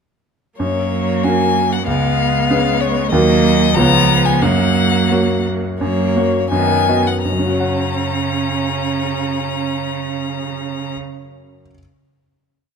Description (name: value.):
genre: quick classical-period movement for piano quartet.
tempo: 80-97 BPM.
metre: 2/4.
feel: rubato.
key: F# major.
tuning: A4 = 440 Hz.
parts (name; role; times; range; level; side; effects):
rich violin; melody; 0.6-10.9 s; C#5 to A#5; -20 LUFS; left 10 dB; none.
clear cello; second line; 0.6-10.9 s; C#3 to G#3; -21 LUFS; right 8 dB; none.
clear concert grand piano; accompaniment; 0.6-11.8 s; C#2 to F#5; -18 LUFS; equal; none.
rich viola; accompaniment; 0.6-10.9 s; A#3 to C#4; -23 LUFS; right 3 dB; none.
room: moderate scoring stage reverb, RT60 1.7 s.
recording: close, detailed microphones.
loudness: -14 LUFS.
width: side -6 dB against mid.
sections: 0.6-5.8 A section; 5.8-7.3 coda; 7.3-10.2 final chord.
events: slowing down 3.8-7.3.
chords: 0.6 F#; 1.9 C#7; 3.1 D#m; 3.8 C#7; 4.4 F#; 6.5 B/F#; 7.3 F#.